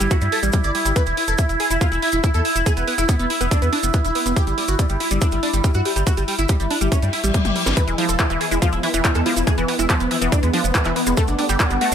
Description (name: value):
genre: psychedelic trance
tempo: 141 BPM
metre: 4/4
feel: straight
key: unclear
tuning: A4 = 440 Hz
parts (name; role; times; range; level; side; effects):
- supersaw stab; melody; 0.0-11.9 s; G3 to D5; -23 LUFS; equal; phaser, sidechain pumping, ping-pong delay
- overtone-sweeping drone; sustained chords; 0.0-11.9 s; B3 to E4; -24 LUFS; equal; chorus, built-in reverb, sidechain pumping
- round analog bass; bass; 0.0-11.9 s; E1 to G2; -23 LUFS; equal; none
- drum and bass drum kit; drums; 0.0-11.9 s; handclaps, hi-hat, snare drum, toms; -25 LUFS; equal; overdrive, small room ambience
- maracas; percussion; 0.0-11.9 s; none; -30 LUFS; right 5 dB; none
- electronic kick drum; drums; 0.1-11.7 s; none; -18 LUFS; equal; overdrive, small room ambience
- reverse cymbal; sound effects; 7.1-7.8 s; none; -28 LUFS; left 5 dB; none
- wide unison pluck; riff; 7.8-11.9 s; E3 to B3; -24 LUFS; moving between left 4 dB and right 3 dB; auto-pan, sidechain pumping, digital delay
room: light reverb, digital ambience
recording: none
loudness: -17 LUFS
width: side -8 dB against mid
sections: 0.0-11.9 A section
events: reverse cymbal 7.1-7.8; drum fill 7.3-7.8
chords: 0.0 G5; 1.0 E5; 4.4 Em/G; 7.8 E5; 11.2 G5